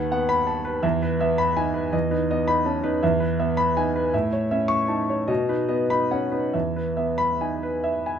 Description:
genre	classical, romantic character piece for solo piano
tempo	46-56 BPM (dotted quarters)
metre	6/8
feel	rubato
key	E major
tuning	A4 = 438 Hz
part	warm grand piano	solo	0.0-8.2 s	D#2 to C#6	-21 LUFS	equal	none
room	light reverb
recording	minimal, uncompressed stereo recording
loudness	-21 LUFS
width	side -8 dB against mid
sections	0.0-8.2 A section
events	none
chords	0.0 B7/D#; 0.8 E; 1.9 B7/E; 3.0 E; 4.1 A; 5.3 B; 6.5 E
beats	0.83 | 1.93 3.02 | 4.13 5.29 | 6.54 7.84

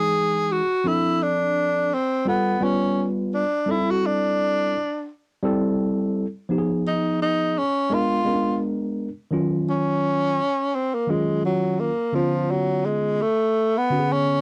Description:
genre	hip hop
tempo	85 BPM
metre	4/4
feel	swing 58% on 16ths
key	unclear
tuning	A4 = 440 Hz
part	breathy tenor saxophone	melody	0.0-14.4 s	F3 to G#4	-24 LUFS	equal	cassette tape
part	mellow tine electric piano	accompaniment	0.0-14.4 s	D3 to B4	-26 LUFS	equal	none
room	light reverb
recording	home recording on cassette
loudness	-23 LUFS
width	mono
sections	0.0-9.3 A section; 9.3-14.4 A section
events	tenor saxophone solo 0.0-9.3, 9.3-14.4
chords	0.0 Emaj9; 0.9 Dm7; 2.3 G9; 3.7 C6; 6.5 Fm7b5; 7.9 Bb7b9; 9.3 Ebm9; 12.1 Db7b9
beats	0.15 | 0.85 1.56 2.26 2.97 | 3.68 4.38 5.09 5.79 | 6.50 7.21 7.91 8.62 | 9.32 10.03 10.73 11.44 | 12.15 12.85 13.56 14.26

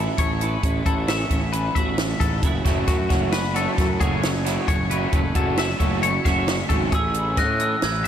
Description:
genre	math rock and midwest emo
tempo	134 BPM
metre	5/4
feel	straight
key	A major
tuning	A4 = 439 Hz
part	twelve-string electric guitar	accompaniment	0.0-8.1 s	E2 to G#4	-29 LUFS	right 5 dB	ensemble chorus
part	twangy electric guitar	arpeggios	0.0-8.1 s	F#4 to E5	-26 LUFS	left 5 dB	lush chorus, diffuse ambient delay
part	fuzz fingered electric bass	bass	0.0-8.1 s	F#1 to A2	-25 LUFS	equal	overdrive
part	compact cocktail drum kit	drums	0.2-8.1 s	hi-hat, kick drum, snare drum	-24 LUFS	equal	none
part	raw garage guitar	riff	2.6-6.9 s	F#3 to F#4	-28 LUFS	right 1 dB	overdrive
part	glockenspiel with hard plastic mallets	melody	6.9-8.1 s	E6 to G#6	-24 LUFS	right 1 dB	diffuse ambient delay
room	moderate huge ambient reverb, RT60 5.1 s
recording	dreamy mix soaked in reverb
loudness	-19 LUFS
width	side -9 dB against mid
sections	0.0-6.9 A section; 6.9-8.1 B section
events	none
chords	0.0 Amaj9; 2.4 F#m9; 6.9 Amaj7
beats	| 0.18 0.64 1.08 1.53 1.98 | 2.43 2.88 3.33 3.78 4.23 | 4.68 5.13 5.58 6.03 6.48 | 6.93 7.38 7.83

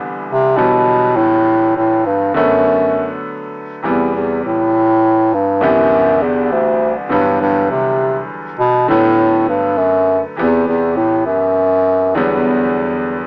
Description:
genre	progressive instrumental, progressive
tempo	202 BPM (eighths)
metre	11/8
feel	straight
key	E minor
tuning	A4 = 442 Hz
part	bright concert grand piano	accompaniment	0.0-13.3 s	C2 to G4	-19 LUFS	equal	cassette tape
part	clear bass clarinet	melody	0.3-13.3 s	D2 to C3	-12 LUFS	equal	cassette tape
room	light reverb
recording	home recording on cassette, small speaker sound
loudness	-12 LUFS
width	side -37 dB against mid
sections	0.0-13.3 A section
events	none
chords	0.0 Cmaj9; 0.6 Em7; 2.4 Bm7; 3.8 Am9; 5.6 Cmaj9; 7.1 Em7; 8.9 Bm7; 10.4 Am13/E (rootless); 12.2 Em9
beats	0.27 | 0.57 0.87 1.16 1.46 1.76 2.06 2.35 2.65 2.94 3.24 3.54 | 3.84 4.13 4.43 4.73 5.02 5.32 5.62 5.92 6.21 6.51 6.81 | 7.10 7.40 7.70 8.00 8.29 8.59 8.89 9.19 9.48 9.78 10.08 | 10.38 10.67 10.97 11.27 11.56 11.86 12.16 12.46 12.76 13.05

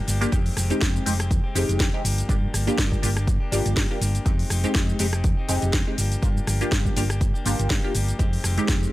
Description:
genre	filtered disco house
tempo	122 BPM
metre	4/4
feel	swing 55% on 16ths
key	F dorian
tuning	A4 = 445 Hz
part	direct-recorded clean electric guitar	riff	0.0-8.9 s	Eb3 to G4	-34 LUFS	left 3 dB	sidechain pumping
part	hollow-body short-scale fingered electric bass	bass	0.1-8.8 s	F1 to G2	-24 LUFS	equal	sidechain pumping
part	house drum kit	drums	0.1-8.9 s	hi-hat, rim click, shaker, snare drum	-28 LUFS	equal	overdrive, studio reverb
part	funky polysynth comp	accompaniment	0.2-8.9 s	Ab3 to G4	-27 LUFS	equal	chorus, phaser, sidechain pumping
part	electronic kick drum	drums	0.3-8.8 s	none	-24 LUFS	equal	studio reverb
room	little or no reverb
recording	dry, gritty hardware recording, transformer saturation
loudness	-20 LUFS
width	side -16 dB against mid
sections	0.0-8.9 A section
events	none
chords	0.3 Fm9; 2.0 Gm7; 4.3 Fm9; 6.0 Gm7; 8.2 Fm9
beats	| 0.33 0.82 1.31 1.80 | 2.29 2.78 3.28 3.77 | 4.26 4.75 5.24 5.74 | 6.23 6.72 7.21 7.70 | 8.19 8.69

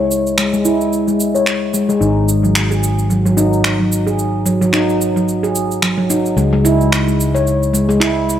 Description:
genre	organic downtempo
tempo	110 BPM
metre	4/4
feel	swing 57% on 16ths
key	unclear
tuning	A4 = 436 Hz
part	handpan	arpeggios	0.0-8.2 s	F#3 to C#5	-15 LUFS	equal	low-pass filter, tape echo
part	fretless electric bass	bass	0.0-8.4 s	G#1 to C#2	-19 LUFS	equal	none
part	electronic cabasa and finger snaps	drums	0.1-8.4 s	none	-20 LUFS	right 1 dB	none
room	moderate lush hall reverb, RT60 2.0 s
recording	dry, gritty hardware recording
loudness	-13 LUFS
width	side -10 dB against mid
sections	0.0-8.4 A section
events	filter sweep on handpan 0.0-8.4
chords	0.0 C#5; 2.0 G#5; 6.4 C#m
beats	0.38 0.92 1.47 | 2.01 2.56 3.10 3.65 | 4.20 4.74 5.29 5.83 | 6.38 6.92 7.47 8.01

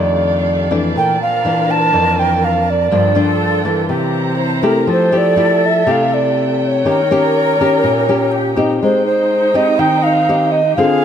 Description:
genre	bossa nova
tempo	122 BPM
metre	4/4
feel	straight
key	F major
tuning	A4 = 439 Hz
part	bright reedy alto ocarina	melody	0.0-11.0 s	C5 to A5	-15 LUFS	right 1 dB	none
part	nylon-string guitar	accompaniment	0.0-11.0 s	F2 to Ab4	-16 LUFS	left 2 dB	none
part	warm studio violin section	sustained chords	0.0-11.0 s	Bb3 to Bb5	-25 LUFS	right 2 dB	none
part	breathy mellow flute section	second line	0.9-11.0 s	Eb4 to C5	-20 LUFS	right 2 dB	none
room	moderate plate reverb, RT60 3.4 s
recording	none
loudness	-12 LUFS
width	side -8 dB against mid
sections	0.0-8.8 A section; 8.8-11.0 B section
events	none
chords	0.0 F13; 1.0 Bbmaj9#11; 2.9 Gm7; 3.9 C7b9; 4.9 Fmaj9; 6.8 Eb7; 8.8 Abmaj7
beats	0.46 | 0.95 1.44 1.93 2.43 | 2.92 3.41 3.90 4.39 | 4.88 5.38 5.87 6.36 | 6.85 7.34 7.83 8.32 | 8.81 9.30 9.80 10.29 | 10.78

